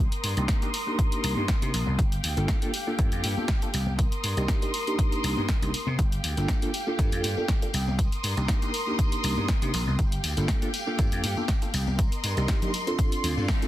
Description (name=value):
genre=filtered disco house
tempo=120 BPM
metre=4/4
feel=swing 53% on 16ths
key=G minor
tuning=A4 = 440 Hz
part: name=warm symphonic violin section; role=sustained chords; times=0.0-13.7 s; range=F4 to Eb6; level=-33 LUFS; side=equal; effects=sidechain pumping, low-pass filter
part: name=vintage slap bass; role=bass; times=0.0-13.5 s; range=G1 to C3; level=-28 LUFS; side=equal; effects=sidechain pumping, low-pass filter
part: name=punchy analog drum machine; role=drums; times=0.1-13.7 s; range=hi-hat, snare drum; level=-32 LUFS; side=left 1 dB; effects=sidechain pumping on hats
part: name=tambourine and congas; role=percussion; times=0.1-13.7 s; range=none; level=-39 LUFS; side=left 6 dB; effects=sidechain pumping on perc, low-pass filter on perc
part: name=mellow reed electric piano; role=accompaniment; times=0.4-13.7 s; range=Bb3 to A4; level=-32 LUFS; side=right 1 dB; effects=fast tremolo, phaser, sidechain pumping, low-pass filter
part: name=electronic kick drum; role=drums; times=0.5-13.6 s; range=none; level=-26 LUFS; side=equal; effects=none
room=little or no reverb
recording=dense, heavily limited modern master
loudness=-24 LUFS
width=side -14 dB against mid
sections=0.0-13.7 A section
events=band accent 13.5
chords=0.0 Cm7; 2.0 Gm7; 4.0 Cm7; 6.0 Gm7; 8.0 Cm7; 10.0 Gm7; 12.0 Cm7; 13.0 Dm7